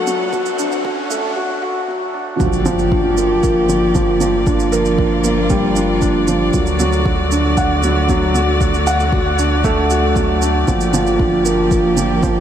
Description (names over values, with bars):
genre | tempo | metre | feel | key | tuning
piano and strings electronica | 116 BPM | 4/4 | straight | G minor | A4 = 438 Hz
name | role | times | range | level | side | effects
muted string quartet | sustained chords | 0.0-12.4 s | D3 to F#5 | -20 LUFS | equal | sidechain pumping
felt-muted upright piano | riff | 0.0-12.4 s | F3 to F#5 | -16 LUFS | right 1 dB | diffuse ambient delay
riser and impact | sound effects | 0.0-4.5 s | none | -29 LUFS | equal | none
shaker | drums | 0.1-12.3 s | none | -29 LUFS | right 8 dB | high-pass filter on perc, high-pass filter on room
electronic kick drum | drums | 0.3-12.3 s | none | -19 LUFS | equal | none
warm sub bass | bass | 2.4-12.4 s | G1 to D2 | -21 LUFS | equal | sidechain pumping
room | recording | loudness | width
moderate huge ambient reverb, RT60 8.6 s | dreamy mix soaked in reverb, high-pass filter | -13 LUFS | side -9 dB against mid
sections
0.0-2.4 A section; 2.4-12.4 B section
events
build-up 0.0-2.4; riser 0.0-1.4; filter sweep 0.0-2.4; break 1.4-2.4; drop 2.4-12.4; impact 2.4-4.5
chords
0.0 D; 2.4 Gm7; 6.5 D; 10.7 Gm7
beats
| 0.33 0.85 1.37 1.88 | 2.40 2.92 3.44 3.95 | 4.47 4.99 5.50 6.02 | 6.54 7.06 7.57 8.09 | 8.61 9.12 9.64 10.16 | 10.68 11.19 11.71 12.23